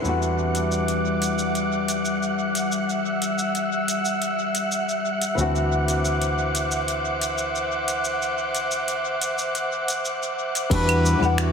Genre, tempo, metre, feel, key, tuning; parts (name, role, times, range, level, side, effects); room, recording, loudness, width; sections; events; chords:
sunset chillout; 90 BPM; 4/4; straight; E minor; A4 = 440 Hz
flamenco guitar; accompaniment; 0.0-11.5 s; E3 to F#5; -28 LUFS; moving between left 4 dB and right 5 dB; auto-pan, analog delay
airy breathy pad; sustained chords; 0.0-11.5 s; G3 to E6; -25 LUFS; left 2 dB; chorus
hollow-body short-scale fingered electric bass; bass; 0.0-11.5 s; D2 to E2; -26 LUFS; equal
smooth R&B drum kit; drums; 0.0-11.5 s; claves, crash cymbal, finger snaps, hi-hat, shaker; -29 LUFS; equal; small room ambience, tape echo
wind-like tuned noise texture; texture; 0.0-11.5 s; E5 to F#6; -29 LUFS; right 2 dB; built-in reverb
warm flugelhorn; melody; 10.7-11.5 s; F#4 to B4; -30 LUFS; right 1 dB; dub echo
electronic kick drum; drums; 10.7-10.8 s; -25 LUFS; equal; small room ambience
wet plate reverb, RT60 2.7 s; echo-heavy mix; -21 LUFS; side -6 dB against mid
0.0-10.7 A section
filter sweep on analog synth pad 0.0-10.7
0.0 Em9; 5.4 D9; 10.7 Em9